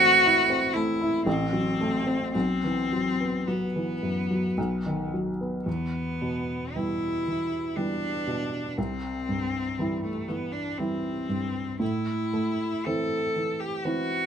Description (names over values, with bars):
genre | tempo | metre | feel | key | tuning
classical, romantic duo for cello and grand piano | 53-62 BPM | 3/4 | rubato | E minor | A4 = 441 Hz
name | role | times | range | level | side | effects
rich cello | melody | 0.0-14.3 s | A3 to A4 | -26 LUFS | equal | none
dark baby grand piano | accompaniment | 0.0-14.3 s | A1 to E4 | -28 LUFS | right 1 dB | none
room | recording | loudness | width
light reverb | close, detailed microphones | -25 LUFS | side -8 dB against mid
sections
0.0-5.7 A section; 5.7-14.3 B section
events
none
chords
0.0 Am; 1.3 F#dim/A; 2.3 Bsus4; 4.6 B; 5.7 Em; 8.8 C; 11.8 Am